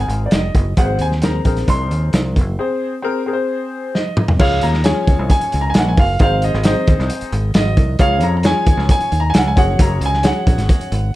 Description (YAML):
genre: uptempo 1960s-style soul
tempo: 133 BPM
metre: 4/4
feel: straight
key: Db major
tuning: A4 = 439 Hz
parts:
  - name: warm concert grand piano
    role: melody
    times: 0.0-11.2 s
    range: D5 to C6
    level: -21 LUFS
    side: right 1 dB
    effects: slapback echo
  - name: clear upright piano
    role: accompaniment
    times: 0.0-10.9 s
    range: C4 to Db5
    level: -22 LUFS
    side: left 4 dB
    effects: none
  - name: fingered electric bass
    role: bass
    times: 0.0-11.1 s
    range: F1 to F2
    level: -18 LUFS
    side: equal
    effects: none
  - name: crunchy breakbeat drum kit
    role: drums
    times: 0.1-11.0 s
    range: crash cymbal, hi-hat, kick drum, snare drum, toms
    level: -16 LUFS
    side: equal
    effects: none
room: light reverb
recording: dark, warm production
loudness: -13 LUFS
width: side -16 dB against mid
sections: 0.0-4.4 A section; 4.4-11.2 B section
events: break 2.6-4.4; drum fill 3.9-4.4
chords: 0.0 Abadd9; 4.4 Db; 6.2 Ab; 8.0 Db; 9.6 Gbsus2